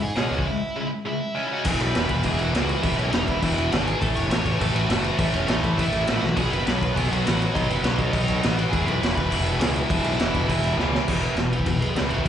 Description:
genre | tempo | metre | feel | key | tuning
punk rock | 204 BPM | 4/4 | straight | E major | A4 = 439 Hz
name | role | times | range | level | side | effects
bluesy overdriven lead guitar | melody | 0.0-12.3 s | E3 to C#6 | -29 LUFS | right 1 dB | distortion, tape echo
modern bright picked electric bass | bass | 0.0-12.3 s | E1 to B2 | -26 LUFS | equal | none
tight distorted guitar | riff | 0.2-12.3 s | E2 to C#4 | -25 LUFS | equal | distortion, slapback echo
raw garage drum kit | drums | 0.2-12.3 s | crash cymbal, hi-hat, kick drum, snare drum, splash cymbal | -26 LUFS | equal | none
room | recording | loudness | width
small room reverb | live gig heard through the venue's PA, club reverb, nothing above 10.7 kHz | -20 LUFS | side -9 dB against mid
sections
0.0-1.7 A section; 1.7-11.1 B section; 11.1-12.3 A section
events
break 0.5-1.7; drum fill 6.2, 10.8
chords
0.0 C#m; 1.7 E; 4.0 A; 6.2 B; 8.7 E

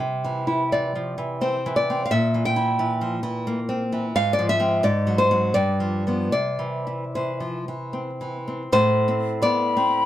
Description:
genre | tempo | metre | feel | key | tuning
romantic duo for flute and classical guitar | 72-89 BPM | 3/4 | rubato | C major | A4 = 436 Hz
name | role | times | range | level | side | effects
nylon-string guitar | accompaniment | 0.0-10.1 s | G2 to G5 | -21 LUFS | equal | none
hollow concert flute | melody | 9.4-10.1 s | B5 | -20 LUFS | left 4 dB | none
room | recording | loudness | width
moderate studio reverb, RT60 0.5 s | none | -20 LUFS | side -12 dB against mid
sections
0.0-8.7 A section; 8.7-10.1 B section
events
none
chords
0.0 C; 2.1 C7/Bb; 4.1 Fm/Ab; 4.8 Ab7; 5.6 G7; 6.3 C; 8.7 Am

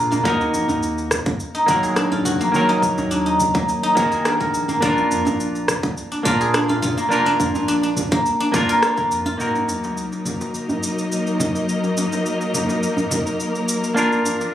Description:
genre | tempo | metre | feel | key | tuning
organic downtempo | 105 BPM | 4/4 | straight | Eb harmonic minor | A4 = 440 Hz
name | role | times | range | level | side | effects
semi-hollow electric guitar | accompaniment | 0.0-14.5 s | Eb3 to Bb4 | -22 LUFS | right 1 dB | sidechain pumping, digital delay
guzheng | arpeggios | 0.0-12.2 s | Bb3 to D5 | -20 LUFS | left 1 dB | low-pass filter, digital delay
warm sub bass | bass | 0.0-9.3 s | Eb1 to Bb2 | -30 LUFS | equal | none
organic electronic drum kit | drums | 0.1-14.5 s | rim click, shaker, toms | -26 LUFS | equal | none
djembe | percussion | 0.1-14.5 s | none | -29 LUFS | right 3 dB | none
electronic kick drum | drums | 0.3-9.1 s | none | -24 LUFS | equal | none
dark symphonic string section | sustained chords | 9.4-14.5 s | F3 to Eb5 | -22 LUFS | left 1 dB | vintage 12-bit sampler grit, sidechain pumping
sub drop | sound effects | 9.4-11.7 s | none | -38 LUFS | left 1 dB | none
room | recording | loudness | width
light reverb, digital ambience | recorded on a phone in the room, club reverb, compression | -17 LUFS | side -11 dB against mid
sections
0.0-9.4 A section; 9.4-14.5 B section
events
impact 9.4-11.7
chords
0.3 Ebm; 4.8 Bb; 9.4 Ebm; 14.0 Bb

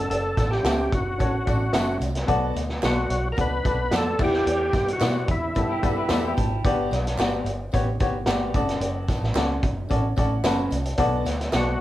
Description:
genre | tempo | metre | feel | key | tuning
uptempo 1960s-style soul | 110 BPM | 4/4 | straight | D major | A4 = 440 Hz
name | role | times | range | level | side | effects
overdriven tonewheel organ | melody | 0.0-6.3, 11.6-11.8 s | E4 to B4 | -26 LUFS | equal | chorus vibrato
clear grand piano | accompaniment | 0.0-11.8 s | G2 to A5 | -27 LUFS | left 2 dB | none
vintage muted fingered electric bass | bass | 0.0-11.8 s | F#1 to B2 | -28 LUFS | equal | none
vintage drum kit | drums | 0.1-11.7 s | crash cymbal, hi-hat, kick drum, snare drum | -25 LUFS | equal | none
congas | percussion | 0.1-11.7 s | none | -40 LUFS | right 4 dB | none
tambourine and handclaps | percussion | 0.4-11.7 s | none | -41 LUFS | right 3 dB | none
electric guitar at the edge of break-up | riff | 5.7-6.6 s | E4 to B4 | -31 LUFS | right 1 dB | spring reverb
room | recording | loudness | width
wet small room reverb, RT60 0.5 s | band playing live in one room | -21 LUFS | side -14 dB against mid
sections
0.0-11.8 A section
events
grand piano fill 5.8-6.6, 9.9-11.0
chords
0.0 Dmaj7/F#; 2.3 Bm7; 4.2 Em7; 6.6 Gmaj7; 8.5 Dmaj7/F#; 11.0 Bm7

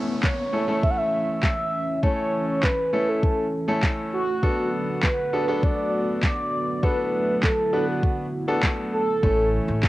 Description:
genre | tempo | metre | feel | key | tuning
dance-pop | 100 BPM | 4/4 | straight | D major | A4 = 439 Hz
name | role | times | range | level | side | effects
clear concert grand piano | accompaniment | 0.0-9.8 s | A3 to B4 | -27 LUFS | left 1 dB | sidechain pumping, cassette tape
warm analog pad | sustained chords | 0.0-9.9 s | D3 to F#4 | -31 LUFS | equal | chorus, sidechain pumping, cassette tape
downlifter | sound effects | 0.0-4.4 s | none | -35 LUFS | left 2 dB | none
mellow horn-like synth lead | melody | 0.2-9.9 s | F#4 to F#5 | -25 LUFS | right 1 dB | chorus, phaser
smooth R&B drum kit | drums | 0.2-9.9 s | handclaps, kick drum, snare drum | -22 LUFS | equal | cassette tape
upright bass | bass | 9.2-9.9 s | A1 | -25 LUFS | equal | sidechain pumping
room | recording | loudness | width
digital ambience | home recording on cassette | -21 LUFS | side -17 dB against mid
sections
0.0-9.9 A section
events
none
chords
0.0 A; 4.4 D6; 9.2 A

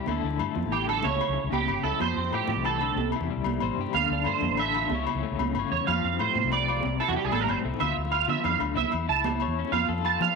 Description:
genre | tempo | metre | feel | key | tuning
highlife guitar band | 124 BPM (dotted quarters) | 12/8 | straight | D minor | A4 = 438 Hz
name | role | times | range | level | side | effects
electric guitar at the edge of break-up | accompaniment | 0.0-10.4 s | A2 to C#5 | -31 LUFS | left 14 dB | tremolo
vintage muted fingered electric bass | bass | 0.1-10.3 s | G1 to F3 | -32 LUFS | left 2 dB | none
agogo bells | percussion | 0.1-10.2 s | none | -34 LUFS | left 14 dB | none
congas | percussion | 0.1-10.3 s | none | -34 LUFS | right 11 dB | none
electric guitar at the edge of break-up | arpeggios | 0.7-10.4 s | F#4 to A5 | -27 LUFS | right 13 dB | ensemble chorus, slapback echo
room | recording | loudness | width
light reverb, small room ambience | 1960s-style stereo with parts hard left and right | -24 LUFS | side -4 dB against mid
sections
0.0-7.8 A section; 7.8-10.4 B section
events
clean electric guitar solo 0.0-7.8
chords
0.1 Dmadd9; 1.0 A/C#; 2.0 F; 3.0 C; 3.9 Dmadd9; 4.9 A/C#; 5.9 F; 6.8 C; 7.3 Am7; 7.8 Dmadd9; 8.8 A; 9.7 F

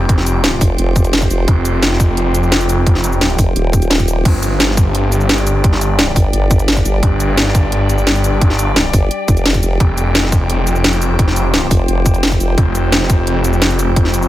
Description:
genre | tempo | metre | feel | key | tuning
dark technical drum and bass | 173 BPM | 4/4 | straight | unclear | A4 = 440 Hz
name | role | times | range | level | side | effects
metallic inharmonic drone | sustained chords | 0.0-14.3 s | F3 to G4 | -20 LUFS | left 1 dB | chorus, built-in reverb, vintage 12-bit sampler grit, sidechain pumping
snarling distorted saw bass | bass | 0.0-14.3 s | F1 to G1 | -15 LUFS | equal | distortion, tube saturation, sidechain pumping
drum and bass drum kit | drums | 0.1-14.3 s | crash cymbal, hi-hat, shaker, snare drum | -16 LUFS | equal | overdrive
electronic kick drum | drums | 0.1-14.0 s | none | -12 LUFS | equal | overdrive
formant-sweep wobble bass | bass | 0.6-12.6 s | Eb1 to G1 | -15 LUFS | equal | chorus
room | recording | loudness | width
digital ambience | none | -11 LUFS | side -14 dB against mid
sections
0.0-14.3 A section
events
none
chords
0.0 F5; 4.3 G5; 9.8 F5

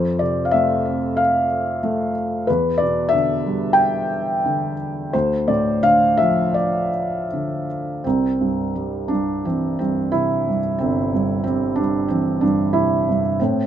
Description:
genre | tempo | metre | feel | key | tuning
classical, lyrical solo piano | 78-94 BPM | 4/4 | rubato | C major | A4 = 440 Hz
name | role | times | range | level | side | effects
felt-muted upright piano | solo | 0.0-13.7 s | G1 to G5 | -18 LUFS | equal | none
room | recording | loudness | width
light reverb | minimal, uncompressed stereo recording | -18 LUFS | side -10 dB against mid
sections
0.0-8.0 A section; 8.0-13.7 B section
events
none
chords
0.0 Fmaj7; 2.5 Em7; 5.1 Dm9; 8.0 C

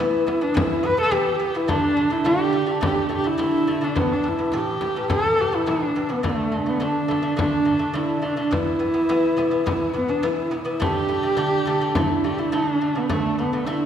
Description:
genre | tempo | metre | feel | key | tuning
mongolian traditional, Mongolian folk | 105 BPM | 4/4 | straight | D zhi mode | A4 = 439 Hz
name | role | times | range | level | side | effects
warm horsehead fiddle | melody | 0.0-13.9 s | A3 to B4 | -22 LUFS | equal | none
lute | arpeggios | 0.0-13.9 s | A2 to B3 | -24 LUFS | equal | none
frame drum | percussion | 0.0-13.8 s | none | -28 LUFS | left 2 dB | none
room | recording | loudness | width
wet scoring stage reverb, RT60 1.6 s | recorded in a church or concert hall | -19 LUFS | side -9 dB against mid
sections
0.0-13.9 A section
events
none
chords
0.0 E5; 1.7 D5; 4.0 A5; 6.2 D5; 8.5 E5; 10.8 D5

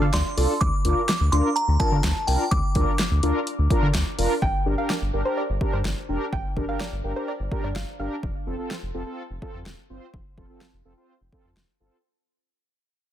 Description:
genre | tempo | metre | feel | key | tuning
synth-pop | 126 BPM | 4/4 | straight | unclear | A4 = 438 Hz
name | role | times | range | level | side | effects
soft round pluck | second line | 0.0-0.5, 4.4-8.1 s | C5 to G5 | -32 LUFS | right 1 dB | chorus, tape echo
mellow synth brass | accompaniment | 0.0-12.0 s | C4 to C5 | -28 LUFS | left 1 dB | chorus
round analog bass | bass | 0.0-11.9 s | F1 to D3 | -24 LUFS | equal | none
glassy synth bell | melody | 0.1-4.1 s | G5 to D6 | -27 LUFS | right 1 dB | chorus, tremolo, tape echo
deep house drum kit | drums | 0.1-11.7 s | handclaps, hi-hat, kick drum, snare drum | -26 LUFS | equal | none
room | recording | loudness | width
light reverb | dense, heavily limited modern master | -22 LUFS | side -11 dB against mid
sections
0.0-4.4 A section; 4.4-12.0 B section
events
fade-out 4.4-12.0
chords
0.0 Dm; 0.6 Bb; 4.4 Gm; 8.2 F

